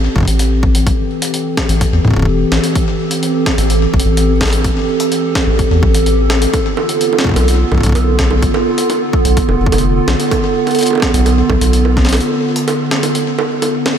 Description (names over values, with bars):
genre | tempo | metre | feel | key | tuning
IDM | 127 BPM | 4/4 | straight | A minor | A4 = 440 Hz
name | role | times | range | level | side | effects
warbly tape-like pad | sustained chords | 0.0-14.0 s | D3 to A4 | -16 LUFS | right 2 dB | chorus, built-in reverb, sidechain pumping
round analog bass | bass | 0.0-12.2 s | E1 to A2 | -14 LUFS | equal | none
electronic kick drum | drums | 0.2-12.1 s | none | -16 LUFS | equal | none
jungle sampler-style drum kit | drums | 0.3-14.0 s | bongos, hi-hat, snare drum | -18 LUFS | right 1 dB | overdrive, ping-pong delay
room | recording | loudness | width
moderate huge ambient reverb, RT60 7.6 s | dreamy mix soaked in reverb | -11 LUFS | side -8 dB against mid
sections
0.0-14.0 A section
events
break 12.2-14.0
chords
0.0 Am7; 6.5 Bm7b5